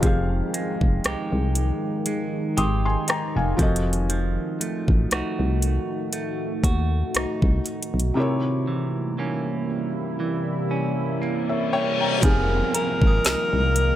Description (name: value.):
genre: contemporary R&B.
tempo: 59 BPM.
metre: 4/4.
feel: swing 54% on 16ths.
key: F minor.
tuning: A4 = 441 Hz.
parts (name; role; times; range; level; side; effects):
felt-muted upright piano; accompaniment; 0.0-14.0 s; C3 to Eb6; -29 LUFS; left 2 dB; none.
deep dark ambient pad; sustained chords; 0.0-14.0 s; C3 to G5; -29 LUFS; equal; chorus, built-in reverb, sidechain pumping.
clean electric guitar; arpeggios; 0.0-14.0 s; C3 to Ab4; -29 LUFS; right 4 dB; tape echo.
solid FM bass; bass; 0.0-13.9 s; F1 to Eb2; -23 LUFS; equal; none.
smooth R&B drum kit; drums; 0.0-14.0 s; hi-hat, kick drum, rim click, snare drum; -22 LUFS; equal; none.
downlifter and reverse cymbal; sound effects; 0.0-4.1, 11.4-14.0 s; none; -32 LUFS; left 1 dB; none.
breathy alto saxophone; melody; 11.7-14.0 s; Bb4 to Db5; -24 LUFS; left 1 dB; tape echo.
synth chime; texture; 12.7-14.0 s; Bb5 to F6; -35 LUFS; left 3 dB; ensemble chorus, tape echo.
room: digital ambience.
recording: none.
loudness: -21 LUFS.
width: side -12 dB against mid.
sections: 0.0-12.2 A section; 12.2-14.0 B section.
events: reverse cymbal 11.4-12.2.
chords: 0.0 Fm9; 3.6 F7b9; 8.2 C7b9; 12.2 Fm11.